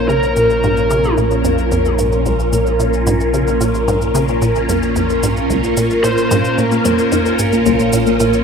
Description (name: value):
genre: ambient, sequencer-driven space music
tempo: 111 BPM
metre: 4/4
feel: straight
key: Bb minor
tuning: A4 = 436 Hz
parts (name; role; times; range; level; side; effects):
- lead guitar through a small cranked amp; melody; 0.0-1.1, 6.0-6.5 s; Bb4 to C5; -20 LUFS; left 1 dB; overdrive, shimmer reverb, ping-pong delay
- phased string machine; sustained chords; 0.0-8.4 s; Bb2 to Bb4; -16 LUFS; equal; ensemble chorus, phaser, shimmer reverb
- round analog bass; bass; 0.0-8.4 s; Bb1; -22 LUFS; equal; none
- resonant blip pluck; riff; 0.1-8.3 s; Db2 to Db3; -20 LUFS; right 1 dB; chorus, cassette tape, ping-pong delay
- shaker and congas; percussion; 0.1-8.4 s; none; -27 LUFS; left 3 dB; ping-pong delay
- soft round pluck; arpeggios; 6.7-8.3 s; Bb3 to Bb4; -17 LUFS; left 3 dB; chorus, auto-pan, ping-pong delay
room: wet plate reverb, RT60 2.5 s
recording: none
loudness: -13 LUFS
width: side -6 dB against mid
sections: 0.0-8.4 A section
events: fade-in on drum 0.0-8.4; filter sweep on synth arpeggio sound 0.0-8.4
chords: 0.0 Bbm